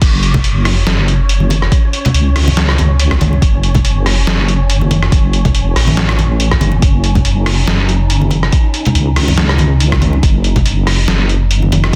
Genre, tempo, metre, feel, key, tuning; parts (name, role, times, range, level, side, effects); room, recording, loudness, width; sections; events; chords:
deep dubstep; 141 BPM; 4/4; swing 55% on 16ths, half-time; F# dorian; A4 = 441 Hz
deep soft wobble bass; bass; 0.0-12.0 s; F#1 to C#2; -15 LUFS; equal; chorus
electronic kick drum; drums; 0.0-12.0 s; -15 LUFS; equal; overdrive
trip hop sampler-style drum kit; drums; 0.0-12.0 s; crash cymbal, hi-hat, rim click, snare drum; -20 LUFS; equal
wind-like tuned noise texture; texture; 0.3-12.0 s; C#4 to C#5; -27 LUFS; equal; built-in reverb
congas; percussion; 0.3-11.8 s; -20 LUFS; equal
little or no reverb; dense, heavily limited modern master; -12 LUFS; mono
0.0-12.0 A section
0.0 F#5